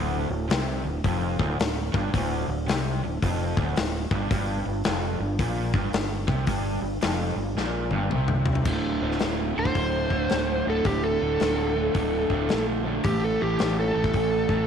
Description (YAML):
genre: blues rock power trio and southern rock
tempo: 110 BPM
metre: 4/4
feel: swing 64% on 8ths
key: D minor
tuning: A4 = 442 Hz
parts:
  - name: raw garage guitar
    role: riff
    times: 0.0-14.7 s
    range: D2 to A3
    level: -27 LUFS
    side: right 2 dB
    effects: overdrive
  - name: growling fingered electric bass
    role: bass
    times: 0.0-14.7 s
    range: D1 to C2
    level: -30 LUFS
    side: right 1 dB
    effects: overdrive
  - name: big rock drum kit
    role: drums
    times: 0.5-14.6 s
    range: crash cymbal, hi-hat, kick drum, snare drum, toms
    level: -28 LUFS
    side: left 3 dB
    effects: none
  - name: overdriven slide guitar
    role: melody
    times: 9.6-14.7 s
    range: G4 to C5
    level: -26 LUFS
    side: equal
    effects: none
room: moderate echo chamber reverb, RT60 1.9 s, small room ambience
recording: 1960s-style stereo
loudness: -23 LUFS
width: side -7 dB against mid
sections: 0.0-8.7 A section; 8.7-14.7 B section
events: drum fill 7.6-8.7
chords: 0.0 Dm; 4.3 Fsus24; 8.7 D5; 13.1 A5